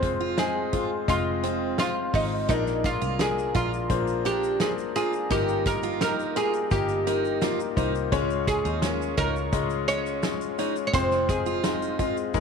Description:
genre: piano-driven pop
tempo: 85 BPM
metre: 4/4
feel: straight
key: unclear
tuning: A4 = 442 Hz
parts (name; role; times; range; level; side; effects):
- oud; melody; 0.0-12.4 s; Eb4 to Db5; -28 LUFS; right 3 dB; none
- clear grand piano; accompaniment; 0.0-12.4 s; G2 to Eb5; -28 LUFS; left 13 dB; none
- warm analog pad; sustained chords; 0.0-12.4 s; Ab3 to Db6; -39 LUFS; right 11 dB; chorus
- vintage muted picked electric bass; bass; 0.0-12.4 s; F1 to Eb2; -32 LUFS; right 1 dB; none
- natural country drum kit; drums; 0.0-12.4 s; hi-hat, kick drum, snare drum, toms; -30 LUFS; right 1 dB; none
- picked steel-string acoustic guitar; riff; 0.2-12.2 s; C4 to F4; -33 LUFS; right 13 dB; none
- tube shaker; percussion; 2.5-12.4 s; none; -49 LUFS; left 16 dB; none
room: moderate spring reverb, RT60 1.8 s, studio reverb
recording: 1960s-style stereo with parts hard left and right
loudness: -23 LUFS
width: side -6 dB against mid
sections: 0.0-12.4 A section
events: none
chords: 0.0 Fm; 2.5 Bb7; 5.3 Ebadd9/G; 8.1 Db; 10.9 Fm

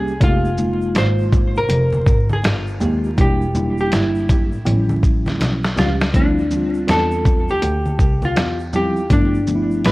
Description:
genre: hip hop, jazz-hop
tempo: 81 BPM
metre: 4/4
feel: swing 62% on 16ths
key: unclear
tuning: A4 = 441 Hz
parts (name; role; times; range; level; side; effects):
- vintage hollow-body jazz guitar; melody; 0.0-9.9 s; D4 to C5; -22 LUFS; equal; analog delay
- mellow tine electric piano; accompaniment; 0.0-9.9 s; E3 to G4; -22 LUFS; equal; medium stereo tremolo
- rich double bass; bass; 0.0-9.9 s; E1 to E2; -21 LUFS; equal; none
- egg shaker and congas; percussion; 0.1-9.9 s; none; -29 LUFS; equal; none
- dusty soul sampler-style drum kit; drums; 0.2-9.9 s; hi-hat, kick drum, shaker, snare drum; -18 LUFS; equal; none
room: light reverb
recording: worn, warbling old tape, cassette tape, vinyl crackle, warbly pitch drift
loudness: -15 LUFS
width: side -20 dB against mid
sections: 0.0-9.9 A section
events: drum fill 5.4-6.1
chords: 0.2 Fm11; 3.2 Em7b5; 4.7 A7b13; 6.1 Dm11; 9.1 G13

